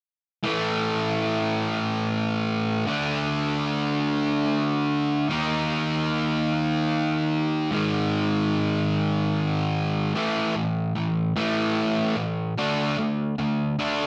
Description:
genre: rock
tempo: 50 BPM (dotted quarters)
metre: 6/8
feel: straight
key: unclear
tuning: A4 = 438 Hz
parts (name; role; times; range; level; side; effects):
- fuzz guitar; solo; 0.4-14.1 s; G#2 to D#4; -25 LUFS; equal; distortion
room: moderate studio ambience, RT60 0.5 s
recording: nothing above 10.8 kHz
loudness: -25 LUFS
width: mono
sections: 0.5-10.2 A section; 10.2-14.1 B section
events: none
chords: 0.5 A5; 2.9 D5; 5.3 D#5; 7.7 G#5; 10.2 A5; 12.6 D5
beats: | 0.46 1.67 | 2.88 4.10 | 5.31 6.52 | 7.73 8.95 | 10.16 11.37 | 12.58 13.79

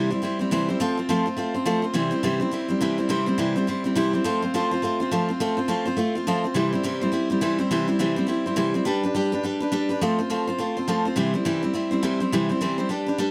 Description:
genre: rock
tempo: 208 BPM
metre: 4/4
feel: swing 61% on 8ths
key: C major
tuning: A4 = 440 Hz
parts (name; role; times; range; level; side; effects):
- picked steel-string acoustic guitar; solo; 0.0-13.3 s; C3 to C5; -24 LUFS; equal; none
room: light reverb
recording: none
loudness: -24 LUFS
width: mono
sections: 0.0-13.3 A section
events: none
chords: 0.0 C; 0.8 F; 1.9 C; 4.3 F; 6.6 C; 8.9 G; 10.0 F; 11.2 C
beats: 0.23 0.51 | 0.80 1.09 1.38 1.66 | 1.95 2.24 2.52 2.81 | 3.10 3.39 3.68 3.96 | 4.25 4.54 4.83 5.12 | 5.40 5.69 5.98 6.27 | 6.55 6.84 7.13 7.42 | 7.71 8.00 8.29 8.57 | 8.86 9.15 9.44 9.73 | 10.02 10.30 10.59 10.88 | 11.17 11.46 11.75 12.04 | 12.33 12.62 12.90 13.19

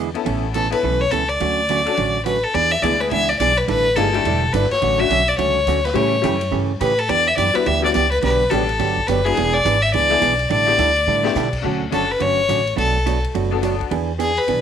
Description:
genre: country, western swing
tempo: 211 BPM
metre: 4/4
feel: swing 62% on 8ths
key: D major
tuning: A4 = 440 Hz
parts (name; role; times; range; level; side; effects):
- hollow-body jazz guitar; accompaniment; 0.0-14.6 s; B2 to A4; -23 LUFS; right 12 dB; none
- upright bass; bass; 0.0-14.6 s; E1 to B2; -24 LUFS; equal; none
- tack piano; accompaniment; 0.1-13.9 s; F#3 to A4; -24 LUFS; left 12 dB; none
- vintage drum kit; drums; 0.1-14.6 s; crash cymbal, hi-hat, kick drum, ride cymbal, snare drum; -35 LUFS; left 6 dB; none
- clear fiddle; melody; 0.5-14.6 s; G#4 to E5; -18 LUFS; left 2 dB; slapback echo
room: moderate plate reverb, RT60 1.1 s, small room ambience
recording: 1960s-style stereo with parts hard left and right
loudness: -16 LUFS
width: side -8 dB against mid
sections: 0.0-2.5 A section; 2.5-11.6 B section; 11.6-14.6 A section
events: drum fill 11.1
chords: 0.3 Aadd9; 1.4 Dmaj7; 2.5 E7; 3.7 A7sus4; 4.8 Dmaj7; 6.0 A7; 7.1 Em9; 8.2 Gmaj7; 9.4 E7; 10.5 A9sus4; 11.6 Dmaj7; 12.8 Bm7; 13.9 E7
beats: | 0.26 0.54 0.83 1.11 | 1.40 1.68 1.97 2.25 | 2.54 2.82 3.11 3.39 | 3.68 3.96 4.25 4.53 | 4.82 5.10 5.38 5.67 | 5.95 6.24 6.52 6.81 | 7.09 7.38 7.66 7.95 | 8.23 8.51 8.80 9.08 | 9.37 9.65 9.93 10.22 | 10.50 10.79 11.07 11.36 | 11.64 11.92 12.21 12.49 | 12.78 13.06 13.35 13.63 | 13.92 14.20 14.48

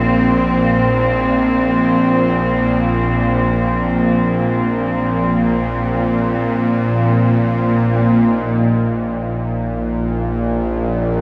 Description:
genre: dark ambient drone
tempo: free time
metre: none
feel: none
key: unclear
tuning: A4 = 436 Hz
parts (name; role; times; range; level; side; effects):
- warm symphonic cello section; sustained chords; 0.0-8.3 s; Bb2 to C4; -19 LUFS; equal; none
- bowed-like drone; drone; 0.0-11.2 s; Bb1 to Bb2; -19 LUFS; equal; built-in reverb
- bronze singing bowl; texture; 0.0-11.2 s; Bb3 to Eb5; -37 LUFS; equal; none
room: wet huge ambient reverb, RT60 8.5 s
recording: none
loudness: -16 LUFS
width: mono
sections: 0.0-8.3 A section; 8.3-11.2 B section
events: none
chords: 0.0 Bbsus2; 8.3 N.C.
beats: free time

